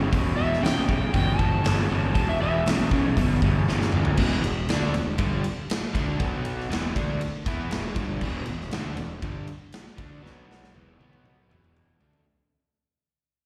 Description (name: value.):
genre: blues rock power trio and southern rock.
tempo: 119 BPM.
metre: 4/4.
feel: straight.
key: E minor.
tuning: A4 = 440 Hz.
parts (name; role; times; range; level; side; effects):
crunchy overdriven guitar; riff; 0.0-12.2 s; E2 to E4; -30 LUFS; equal; slapback echo.
fuzz picked electric bass; bass; 0.0-12.2 s; E1 to E2; -30 LUFS; equal; overdrive.
big rock drum kit; drums; 0.1-12.2 s; crash cymbal, hi-hat, kick drum, ride cymbal, snare drum, toms; -30 LUFS; equal; none.
overdriven slide guitar; melody; 0.4-2.7 s; E5 to A5; -32 LUFS; equal; slapback echo.
room: light reverb, small room ambience.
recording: live gig heard through the venue's PA, recital hall reverb.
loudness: -25 LUFS.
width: mono.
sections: 0.0-4.2 A section; 4.2-12.2 B section.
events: electric slide guitar solo 0.0-4.2; drum fill 3.7-4.2, 10.2-12.2; fade-out 4.2-12.2.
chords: 0.0 Em; 6.2 B5; 6.7 Em; 10.2 B5; 10.7 E5; 11.0 B5; 11.5 E5.